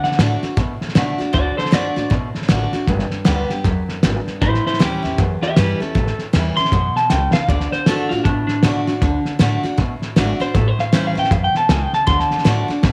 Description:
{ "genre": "rockabilly", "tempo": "156 BPM", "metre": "4/4", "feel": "swing 62% on 8ths", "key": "D major", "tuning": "A4 = 437 Hz", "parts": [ { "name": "electric guitar through a small old amp", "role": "melody", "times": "0.0-2.1, 4.4-12.9 s", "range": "D4 to C6", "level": "-23 LUFS", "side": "equal", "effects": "tape echo" }, { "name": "picked steel-string acoustic guitar", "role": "accompaniment", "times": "0.0-12.9 s", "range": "E2 to G4", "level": "-25 LUFS", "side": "equal", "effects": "none" }, { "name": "upright bass", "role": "bass", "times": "0.0-12.9 s", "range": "G1 to B2", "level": "-24 LUFS", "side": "equal", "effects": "none" }, { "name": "cloth-damped thuddy drum kit", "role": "drums", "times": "0.0-12.9 s", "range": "hi-hat, kick drum, snare drum", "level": "-22 LUFS", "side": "equal", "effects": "none" } ], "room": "light reverb, small room reverb", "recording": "none", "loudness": "-18 LUFS", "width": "mono", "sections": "0.0-1.3 A section; 1.3-12.9 A section", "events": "clean electric guitar solo 0.0-12.9; drum fill 7.1-7.5", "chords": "0.0 D; 2.9 G; 4.4 A7; 7.5 D; 10.6 A7; 12.1 D", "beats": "0.19 0.57 0.96 | 1.34 1.73 2.11 2.50 | 2.88 3.27 3.65 4.04 | 4.42 4.81 5.19 5.57 | 5.96 6.34 6.72 7.11 | 7.49 7.87 8.26 8.64 | 9.02 9.40 9.79 10.17 | 10.55 10.93 11.32 11.70 | 12.08 12.46 12.85" }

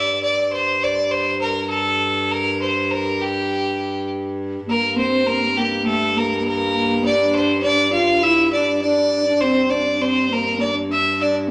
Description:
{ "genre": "medieval dance", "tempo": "101 BPM", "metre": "2/4", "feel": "straight", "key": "G dorian", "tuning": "A4 = 439 Hz", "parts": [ { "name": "clear fiddle", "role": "melody", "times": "0.0-11.3 s", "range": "G4 to F5", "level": "-21 LUFS", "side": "equal", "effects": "none" }, { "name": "rich viola da gamba", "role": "drone", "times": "0.0-11.5 s", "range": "G2", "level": "-28 LUFS", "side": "equal", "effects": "none" }, { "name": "breathy mellow alto flute", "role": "second line", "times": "4.7-11.5 s", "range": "A3 to F4", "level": "-24 LUFS", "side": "equal", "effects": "none" } ], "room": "wet large studio reverb, RT60 1.4 s", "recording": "none", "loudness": "-19 LUFS", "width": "mono", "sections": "0.0-4.7 A section; 4.7-11.5 A section", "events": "none", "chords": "none", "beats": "0.51 | 1.10 1.70 | 2.29 2.88 | 3.48 4.07 | 4.66 5.26 | 5.85 6.45 | 7.04 7.63 | 8.23 8.82 | 9.41 10.01 | 10.60 11.20" }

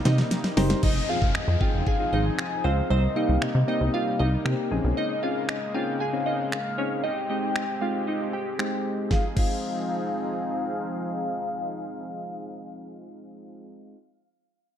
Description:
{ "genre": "dance-pop", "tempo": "116 BPM", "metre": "4/4", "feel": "straight", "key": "F minor", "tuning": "A4 = 441 Hz", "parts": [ { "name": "soft supersaw", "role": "sustained chords", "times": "0.0-13.7 s", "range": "C3 to Ab4", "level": "-33 LUFS", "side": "equal", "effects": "sidechain pumping, low-pass filter" }, { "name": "glassy wavetable pluck", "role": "melody", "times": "0.1-10.6 s", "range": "C4 to Ab5", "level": "-31 LUFS", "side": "right 3 dB", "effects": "chorus, low-pass filter, tape echo" }, { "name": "plucky analog bass", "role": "bass", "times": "0.1-4.9 s", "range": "F1 to C3", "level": "-24 LUFS", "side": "equal", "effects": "sidechain pumping" }, { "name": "pop drum kit", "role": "drums", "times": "0.1-9.5 s", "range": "crash cymbal, finger snaps, hi-hat, kick drum, snare drum", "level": "-27 LUFS", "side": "equal", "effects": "none" }, { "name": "soft electric-piano-like synth keys", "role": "accompaniment", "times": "0.6-14.0 s", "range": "Ab3 to C5", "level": "-31 LUFS", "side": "left 2 dB", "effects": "chorus, sidechain pumping, low-pass filter" }, { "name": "mellow horn-like synth lead", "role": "melody", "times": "0.8-14.0 s", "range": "Eb5 to Ab5", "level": "-32 LUFS", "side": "left 3 dB", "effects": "chorus, low-pass filter, tape echo" }, { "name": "downlifter", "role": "sound effects", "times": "0.8-5.0 s", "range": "none", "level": "-37 LUFS", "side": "equal", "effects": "none" } ], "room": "moderate digital room reverb, RT60 1.1 s, digital ambience", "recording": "dark, warm production", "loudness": "-23 LUFS", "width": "side -9 dB against mid", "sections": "0.8-9.1 A section; 9.1-13.2 B section", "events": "drum fill 0.0-0.8", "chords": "0.0 Cm7; 0.8 Fm7; 2.9 Cm7; 4.7 Bbm11; 7.0 Abmaj7; 9.1 Fm7", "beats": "0.32 | 0.83 1.35 1.87 2.38 | 2.90 3.42 3.94 4.45 | 4.97 5.49 6.00 6.52 | 7.04 7.56 8.07 8.59 | 9.11 9.62 10.14 10.66 | 11.18 11.69 12.21 12.73" }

